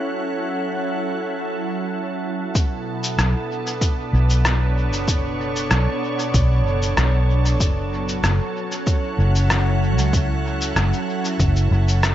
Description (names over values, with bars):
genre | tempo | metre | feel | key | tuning
ambient dub | 95 BPM | 4/4 | straight | B minor | A4 = 440 Hz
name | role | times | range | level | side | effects
soft additive organ-like pad | sustained chords | 0.0-12.1 s | B2 to F#5 | -24 LUFS | right 1 dB | ensemble chorus, built-in reverb
electronic kick drum | drums | 2.6-11.5 s | none | -20 LUFS | equal | none
electronic shaker and rim click | drums | 2.6-12.1 s | none | -25 LUFS | left 1 dB | dub echo
vintage muted fingered electric bass | bass | 3.2-12.1 s | F#1 to C#2 | -18 LUFS | equal | none
room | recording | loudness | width
light reverb | nothing above 7.8 kHz | -18 LUFS | side -12 dB against mid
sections
0.0-2.6 A section; 2.6-12.1 B section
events
none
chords
0.0 F#m7; 2.6 Bm7; 7.6 F#m7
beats
| 0.03 0.66 1.29 1.92 | 2.55 3.19 3.82 4.45 | 5.08 5.71 6.34 6.97 | 7.61 8.24 8.87 9.50 | 10.13 10.77 11.40 12.03